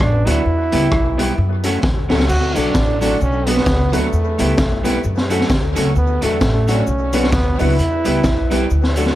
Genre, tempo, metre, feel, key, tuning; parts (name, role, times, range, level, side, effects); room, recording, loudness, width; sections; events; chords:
ska; 131 BPM; 4/4; swing 59% on 8ths; A4 = 440 Hz
clear trombone; melody; 0.0-9.0 s; A3 to F#4; -21 LUFS; right 2 dB; tape echo, plate reverb
upright bass; bass; 0.0-9.1 s; A1 to F#2; -19 LUFS; equal
raw garage drum kit; drums; 0.0-9.2 s; crash cymbal, hi-hat, kick drum, rim click, snare drum; -20 LUFS; equal; tape echo
electric guitar at the edge of break-up; accompaniment; 0.3-9.1 s; F#3 to G4; -24 LUFS; right 4 dB; plate reverb
warm upright piano; stabs; 0.3-9.1 s; A3 to B4; -24 LUFS; left 4 dB; tape echo, plate reverb
cabasa; percussion; 2.3-9.1 s; -41 LUFS; left 5 dB
light reverb; -14 LUFS; side -14 dB against mid
0.0-9.2 A section
drum fill 1.8-2.3
0.5 Em; 1.4 F#m; 2.3 D; 3.2 Bm; 4.1 Em; 5.0 F#m; 6.0 D; 6.9 Bm; 7.8 Em